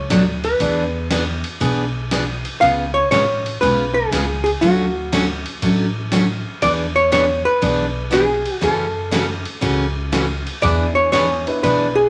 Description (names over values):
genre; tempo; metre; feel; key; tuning
country, western swing; 120 BPM; 4/4; swing 66% on 8ths; unclear; A4 = 440 Hz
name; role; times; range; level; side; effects
archtop guitar, miked and amplified; melody; 0.0-12.1 s; F#4 to E#5; -20 LUFS; equal; none
upright bass; bass; 0.0-12.1 s; A1 to F#2; -28 LUFS; equal; none
picked steel-string acoustic guitar; accompaniment; 0.1-11.9 s; B2 to G#4; -23 LUFS; equal; none
dusty soul sampler-style drum kit; drums; 0.1-11.8 s; hi-hat, kick drum, ride cymbal, snare drum; -28 LUFS; equal; none
clear upright piano; accompaniment; 10.6-12.1 s; B3 to B4; -28 LUFS; equal; none
room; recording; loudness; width
wet large studio reverb, RT60 1.0 s; none; -18 LUFS; mono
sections
0.0-12.1 A section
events
none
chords
0.0 Bm7; 0.6 E7; 2.6 C#7; 4.6 Dmaj7; 6.6 E7; 8.6 F#m7; 10.6 E7